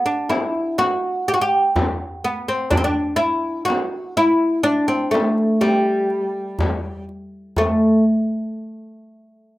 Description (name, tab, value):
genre	Turkish makam ensemble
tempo	124 BPM (eighths)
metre	10/8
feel	straight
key	G makam rast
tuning	A4 = 440 Hz
part	oud	melody	0.0-8.0 s	G3 to G4	-18 LUFS	equal	none
part	darbuka	percussion	0.3-8.0 s	none	-26 LUFS	equal	none
part	frame drum	percussion	0.3-8.0 s	none	-25 LUFS	left 2 dB	none
room	wet small room ambience, RT60 0.5 s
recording	rough home demo mix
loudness	-17 LUFS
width	side -17 dB against mid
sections	0.0-7.6 A section; 7.6-9.6 B section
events	none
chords	none